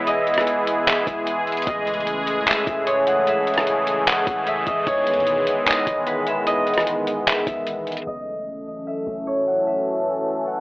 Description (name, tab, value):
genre	hip hop, atmospheric cloud-rap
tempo	150 BPM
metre	4/4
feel	half-time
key	E major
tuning	A4 = 440 Hz
part	concert harp	melody	0.0-10.6 s	B4 to F#5	-22 LUFS	equal	digital delay
part	sweeping resonant pad	sustained chords	0.0-10.6 s	C#3 to A4	-23 LUFS	equal	chorus, sidechain pumping
part	clean 808-style bass	bass	0.0-10.6 s	E1 to B2	-41 LUFS	equal	none
part	trip hop sampler-style drum kit	drums	0.1-8.1 s	handclaps, hi-hat, kick drum, rim click	-23 LUFS	equal	none
room	moderate digital room reverb, RT60 1.1 s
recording	low-pass filter, telephone sound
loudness	-19 LUFS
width	side -22 dB against mid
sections	0.0-8.1 A section; 8.1-10.6 B section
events	none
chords	0.0 Emaj7; 1.7 Amaj7; 4.9 Emaj7; 8.1 F#m7